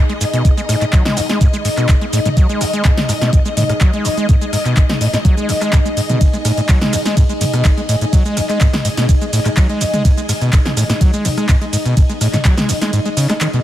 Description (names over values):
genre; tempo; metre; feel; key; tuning
acid house; 125 BPM; 4/4; straight; unclear; A4 = 440 Hz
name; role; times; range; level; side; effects
string machine, full ensemble; sustained chords; 0.0-13.6 s; D#4 to G#5; -24 LUFS; left 1 dB; phaser, ensemble chorus, sidechain pumping
overdriven acid bass; riff; 0.0-13.6 s; G#1 to G#3; -18 LUFS; equal; distortion, tube saturation, analog delay
warm studio string section; texture; 0.0-13.6 s; D#5; -24 LUFS; left 2 dB; sidechain pumping
punchy analog drum machine; drums; 0.1-13.6 s; handclaps, hi-hat, ride cymbal, rim click, shaker, snare drum, toms; -21 LUFS; equal; overdrive, tape echo
electronic kick drum; drums; 0.4-12.6 s; none; -12 LUFS; equal; none
room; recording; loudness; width
light reverb, digital ambience; echo-heavy mix; -12 LUFS; side -13 dB against mid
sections
0.0-13.6 A section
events
kick drops out 12.9-13.6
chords
0.0 G#5